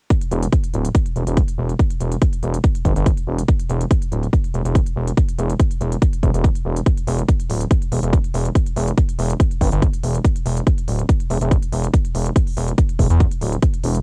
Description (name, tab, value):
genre	driving peak-time techno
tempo	142 BPM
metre	4/4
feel	straight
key	E minor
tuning	A4 = 441 Hz
part	electronic hi-hat	drums	0.1-14.0 s	none	-39 LUFS	equal	cassette tape
part	electronic kick drum	drums	0.1-13.7 s	none	-20 LUFS	equal	cassette tape
part	gritty driven synth bass	bass	0.3-14.0 s	D1 to E2	-22 LUFS	equal	sidechain pumping
room	little or no reverb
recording	home recording on cassette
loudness	-19 LUFS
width	mono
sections	0.1-14.0 A section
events	none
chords	none